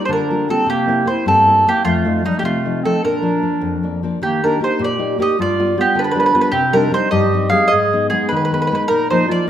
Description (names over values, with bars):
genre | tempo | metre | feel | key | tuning
italian folk, Italian serenade | 102 BPM (dotted quarters) | 6/8 | rubato | Bb major, Eb major from 4.2 s | A4 = 439 Hz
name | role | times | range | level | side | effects
mandolin | melody | 0.0-9.5 s | Eb4 to F5 | -16 LUFS | right 1 dB | none
warm clarinet | second line | 0.0-9.5 s | G3 to Ab4 | -21 LUFS | right 4 dB | none
nylon-string guitar | accompaniment | 0.0-9.5 s | F2 to G4 | -20 LUFS | left 3 dB | none
room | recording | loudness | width
moderate recital hall reverb, RT60 1.3 s | minimal, uncompressed stereo recording | -14 LUFS | side -10 dB against mid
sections
0.0-4.2 A section; 4.2-9.5 B section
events
none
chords
0.0 Gm7; 0.7 C7; 1.9 F7; 3.0 Bb; 4.2 Eb; 5.4 G7; 6.5 Cm; 7.7 Abm; 8.9 Ebsus2/Bb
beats
0.10 | 0.69 1.27 | 1.85 2.44 | 3.02 3.62 | 4.22 4.81 | 5.40 5.98 | 6.55 7.13 | 7.71 8.30 | 8.90 9.48